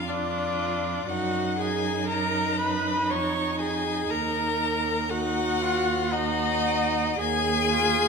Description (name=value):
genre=classical, slow romantic movement for string quartet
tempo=59 BPM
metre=3/4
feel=rubato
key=Eb minor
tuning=A4 = 438 Hz
part: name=clear violin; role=melody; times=0.0-8.1 s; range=D5 to Db6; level=-28 LUFS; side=left 9 dB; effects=none
part: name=rich violin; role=second line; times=0.0-8.1 s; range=D4 to Gb4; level=-31 LUFS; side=equal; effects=none
part: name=clear viola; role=accompaniment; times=0.0-8.1 s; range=D4 to Db5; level=-28 LUFS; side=right 4 dB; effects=none
part: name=rich cello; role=bass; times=0.0-8.1 s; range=Eb2 to Gb2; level=-31 LUFS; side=right 7 dB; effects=none
room=wet recital hall reverb, RT60 1.7 s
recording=minimal, uncompressed stereo recording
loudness=-23 LUFS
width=side -5 dB against mid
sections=0.0-8.1 A section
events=none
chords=0.0 F5; 1.1 Ebm/Gb; 4.1 Ebm; 7.2 Dbadd9/Eb (rootless)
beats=0.10 | 1.09 2.10 3.12 | 4.12 5.11 6.13 | 7.20